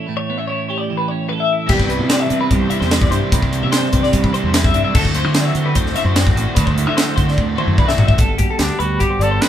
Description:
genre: math rock and midwest emo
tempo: 148 BPM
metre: 4/4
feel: straight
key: G major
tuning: A4 = 440 Hz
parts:
  - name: twelve-string electric guitar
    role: accompaniment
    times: 0.0-9.5 s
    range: G2 to D5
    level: -22 LUFS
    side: right 4 dB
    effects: none
  - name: twelve-string electric guitar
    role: arpeggios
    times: 0.0-9.5 s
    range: G4 to E5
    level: -22 LUFS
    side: left 4 dB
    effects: tremolo
  - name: cranked stack guitar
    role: riff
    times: 1.7-8.2 s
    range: C3 to F#4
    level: -23 LUFS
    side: equal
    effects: overdrive
  - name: growling fingered electric bass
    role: bass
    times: 1.7-9.4 s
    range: G1 to D3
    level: -20 LUFS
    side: equal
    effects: overdrive
  - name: crisp fusion drum kit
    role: drums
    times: 1.7-9.5 s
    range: crash cymbal, hi-hat, kick drum, snare drum, toms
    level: -17 LUFS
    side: equal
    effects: none
  - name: clear trumpet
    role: melody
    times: 8.6-9.5 s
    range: D4 to B4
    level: -22 LUFS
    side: left 1 dB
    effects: none
room: moderate studio reverb, RT60 0.9 s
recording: band playing live in one room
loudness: -14 LUFS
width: side -10 dB against mid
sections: 0.0-8.2 A section; 8.2-9.5 B section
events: drum fill 7.4-8.2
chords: 0.0 A7; 1.7 Cmaj9; 4.9 D9; 8.2 Gmaj9

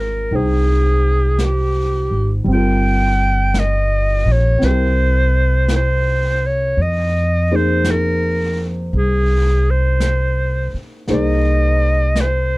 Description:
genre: jazz ballad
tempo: 56 BPM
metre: 4/4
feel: swing 67% on 8ths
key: Ab major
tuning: A4 = 435 Hz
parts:
  - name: bright clarinet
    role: melody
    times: 0.0-12.6 s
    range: G4 to G5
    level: -19 LUFS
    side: equal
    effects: none
  - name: warm concert grand piano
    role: accompaniment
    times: 0.0-12.6 s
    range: G3 to G5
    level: -23 LUFS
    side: equal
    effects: none
  - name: upright bass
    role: bass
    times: 0.0-12.6 s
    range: G1 to F2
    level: -16 LUFS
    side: equal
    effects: none
  - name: vintage brush drum kit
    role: drums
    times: 0.3-12.6 s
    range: brushed snare drum, hi-hat, snare drum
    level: -28 LUFS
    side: equal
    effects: none
room: little or no reverb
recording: none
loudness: -14 LUFS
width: side -21 dB against mid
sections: 0.0-12.6 A section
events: none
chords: 0.0 Abmaj9; 2.5 Eb69/G; 4.6 C7; 6.8 Fm7; 11.1 Abadd9/C

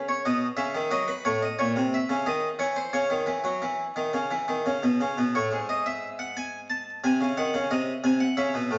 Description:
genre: classical, baroque-style two-part invention for harpsichord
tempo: 89 BPM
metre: 3/4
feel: straight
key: C# minor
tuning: A4 = 440 Hz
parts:
  - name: harpsichord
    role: solo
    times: 0.0-8.8 s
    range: G#2 to A5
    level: -27 LUFS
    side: equal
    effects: none
room: wet stone room reverb, RT60 1.3 s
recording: vinyl crackle, nothing above 7.8 kHz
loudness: -27 LUFS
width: mono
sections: 0.0-5.0 A section; 5.0-8.8 B section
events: none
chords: 0.2 B; 0.9 D#dim/F#; 1.6 A#dim; 2.2 C#madd9/D#; 2.9 C#m; 6.4 N.C.; 7.0 G#7/B#

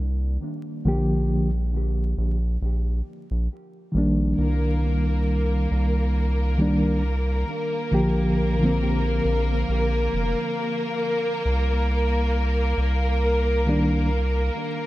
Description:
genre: trip hop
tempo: 68 BPM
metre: 4/4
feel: swing 56% on 16ths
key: C minor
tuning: A4 = 440 Hz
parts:
  - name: round analog bass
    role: bass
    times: 0.0-14.5 s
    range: F1 to C2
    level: -23 LUFS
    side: equal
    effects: tube saturation
  - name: mellow reed electric piano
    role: accompaniment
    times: 0.9-14.1 s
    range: D3 to G4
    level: -25 LUFS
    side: equal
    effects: harmonic tremolo, tape echo
  - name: warm studio violin section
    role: sustained chords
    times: 4.4-14.9 s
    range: Bb3 to Bb4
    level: -26 LUFS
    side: left 1 dB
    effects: none
room: light reverb, small room ambience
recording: echo-heavy mix, vinyl crackle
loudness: -21 LUFS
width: side -16 dB against mid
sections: 0.0-14.9 A section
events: none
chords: 0.0 N.C.; 0.9 Bb; 4.4 Cm7; 7.9 Bb; 11.4 C7(no3)

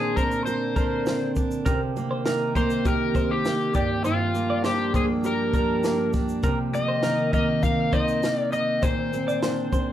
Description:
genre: acoustic pop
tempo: 100 BPM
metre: 4/4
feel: straight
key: C minor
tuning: A4 = 439 Hz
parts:
  - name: overdriven slide guitar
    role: melody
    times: 0.0-9.9 s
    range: F4 to F5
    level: -26 LUFS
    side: left 3 dB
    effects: plate reverb
  - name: picked steel-string acoustic guitar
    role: accompaniment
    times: 0.0-9.9 s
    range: G2 to Bb4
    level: -26 LUFS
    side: right 2 dB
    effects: none
  - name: glassy FM pad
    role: sustained chords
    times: 0.0-9.9 s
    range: D3 to G5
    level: -33 LUFS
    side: left 1 dB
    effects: ensemble chorus, built-in reverb
  - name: twelve-string electric guitar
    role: arpeggios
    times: 0.0-9.9 s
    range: Bb4 to Eb5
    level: -30 LUFS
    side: right 1 dB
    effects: none
  - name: compact cocktail drum kit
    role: drums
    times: 0.2-9.9 s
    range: kick drum, shaker, snare drum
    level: -27 LUFS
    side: left 1 dB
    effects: none
room: wet studio reverb, RT60 0.5 s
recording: heard from further back in the room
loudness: -21 LUFS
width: side -11 dB against mid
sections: 0.0-9.9 A section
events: none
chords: 0.0 Bbadd9; 1.7 Cm7; 3.7 Gm7; 6.4 Cm7; 8.8 Bbadd9

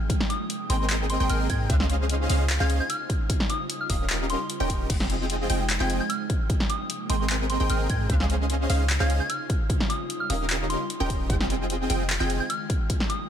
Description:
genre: future bass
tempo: 150 BPM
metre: 4/4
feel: half-time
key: Ab major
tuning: A4 = 440 Hz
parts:
  - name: ethereal airy pad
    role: sustained chords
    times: 0.0-13.3 s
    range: C3 to G5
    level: -35 LUFS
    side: right 1 dB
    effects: ensemble chorus, built-in reverb, sidechain pumping
  - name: dubstep drum kit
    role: drums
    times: 0.1-13.2 s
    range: crash cymbal, handclaps, hi-hat, snare drum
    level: -30 LUFS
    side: left 1 dB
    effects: none
  - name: electronic kick drum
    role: drums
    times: 0.1-13.0 s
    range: none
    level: -26 LUFS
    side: equal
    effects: none
  - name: soft synth bell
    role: melody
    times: 0.3-13.2 s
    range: C6 to Ab6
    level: -33 LUFS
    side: equal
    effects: chorus, sidechain pumping, dub echo
  - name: wide unison pluck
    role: arpeggios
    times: 0.7-12.4 s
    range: F5 to G5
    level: -38 LUFS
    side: right 2 dB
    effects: sidechain pumping
  - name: dense compressed supersaw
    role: riff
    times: 0.7-12.4 s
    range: C4 to G5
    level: -31 LUFS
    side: equal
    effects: sidechain pumping
  - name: warm 808-style bass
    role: bass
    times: 0.7-12.4 s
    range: Eb1 to Ab2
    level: -26 LUFS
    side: equal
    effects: sidechain pumping
room: little or no reverb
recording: none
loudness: -23 LUFS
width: side -9 dB against mid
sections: 0.0-13.3 A section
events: none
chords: 0.1 Abmaj9; 1.7 Dbmaj9; 3.1 Eb9; 4.9 Fm9; 6.5 Abmaj9; 8.1 Dbmaj9; 9.5 Eb9; 11.3 Fm9

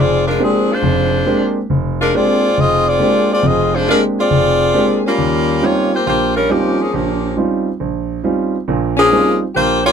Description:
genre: jazz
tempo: 138 BPM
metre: 4/4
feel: swing 67% on 8ths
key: Bb mixolydian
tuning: A4 = 440 Hz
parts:
  - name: warm saxophone section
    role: melody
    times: 0.0-9.9 s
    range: F3 to Eb5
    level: -14 LUFS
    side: left 2 dB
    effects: none
  - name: warm concert grand piano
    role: accompaniment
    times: 0.0-9.9 s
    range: F1 to G4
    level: -16 LUFS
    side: right 2 dB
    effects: none
room: moderate booth ambience, RT60 0.2 s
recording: dark, warm production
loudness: -13 LUFS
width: side -7 dB against mid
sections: 0.0-9.9 A section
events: none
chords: 0.0 Bb13; 5.2 Eb13

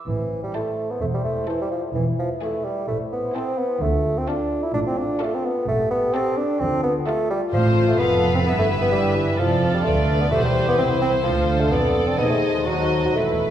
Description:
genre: quick classical-period movement for symphony orchestra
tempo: 128 BPM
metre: 4/4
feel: rubato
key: A minor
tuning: A4 = 440 Hz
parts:
  - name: warm bassoon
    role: accompaniment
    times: 0.1-13.5 s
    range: E3 to E4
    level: -22 LUFS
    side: right 1 dB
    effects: none
  - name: mellow French horn section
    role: sustained chords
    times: 0.1-13.5 s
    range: D4 to C5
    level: -27 LUFS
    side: left 3 dB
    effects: none
  - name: dark chamber cello section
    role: bass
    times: 0.1-13.5 s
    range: C2 to D3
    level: -28 LUFS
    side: right 1 dB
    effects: none
  - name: dark chamber double bass section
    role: bass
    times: 0.1-13.5 s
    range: E1 to D#2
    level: -27 LUFS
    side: right 2 dB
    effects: none
  - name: timpani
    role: percussion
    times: 0.1-0.7, 7.5-13.5 s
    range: E2 to A2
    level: -30 LUFS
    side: equal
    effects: none
  - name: warm chamber violin section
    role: second line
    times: 0.5-13.5 s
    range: G#4 to D#5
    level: -29 LUFS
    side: left 2 dB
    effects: none
  - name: warm studio viola section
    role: accompaniment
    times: 0.5-13.5 s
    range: E4 to A4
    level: -31 LUFS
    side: right 2 dB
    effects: none
  - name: warm chamber violin section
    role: melody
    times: 0.6-13.5 s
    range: A4 to F5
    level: -32 LUFS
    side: left 5 dB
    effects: none
room: wet recital hall reverb, RT60 1.6 s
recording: recorded in a church or concert hall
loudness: -19 LUFS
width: side -10 dB against mid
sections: 0.1-13.5 A section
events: timpani fill 13.2-13.5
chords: 0.1 Am; 2.0 E7; 2.9 Am; 3.8 Dm; 5.7 A7; 6.6 Dm; 7.5 F/A; 8.5 Em/G; 9.4 Dm/F; 10.3 C/E; 11.3 Dm; 12.2 D#dim7

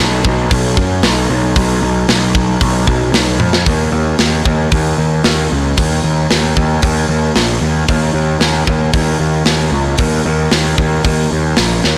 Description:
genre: heavy metal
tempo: 114 BPM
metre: 4/4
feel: straight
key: Eb minor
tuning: A4 = 441 Hz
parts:
  - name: fuzz picked electric bass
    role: bass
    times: 0.0-12.0 s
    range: Bb1 to F#2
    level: -16 LUFS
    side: equal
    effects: overdrive
  - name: tight metal drum kit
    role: drums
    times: 0.2-12.0 s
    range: hi-hat, kick drum, snare drum, toms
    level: -18 LUFS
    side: equal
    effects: soft clipping on kick
room: little or no reverb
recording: blown-out, overdriven recording, overdrive, lossy compression artefacts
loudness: -14 LUFS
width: mono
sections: 0.0-3.7 A section; 3.7-12.0 B section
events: drum fill 3.4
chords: none

